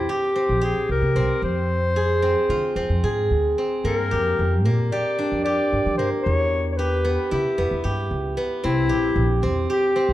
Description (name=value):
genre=contemporary instrumental, contemporary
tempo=225 BPM (eighths)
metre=9/8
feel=straight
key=unclear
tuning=A4 = 440 Hz
part: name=clear clarinet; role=melody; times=0.0-10.1 s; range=E4 to D5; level=-24 LUFS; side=left 3 dB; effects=none
part: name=steel-string zither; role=arpeggios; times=0.0-10.1 s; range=Bb3 to Ab4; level=-23 LUFS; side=right 2 dB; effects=none
part: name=upright bass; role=bass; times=0.0-10.1 s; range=Bb1 to G3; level=-24 LUFS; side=equal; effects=none
room=light reverb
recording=dark, warm production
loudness=-19 LUFS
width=side -14 dB against mid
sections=0.0-10.1 A section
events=none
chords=0.0 C; 1.4 Fm; 3.8 Gm; 6.3 Em; 8.6 C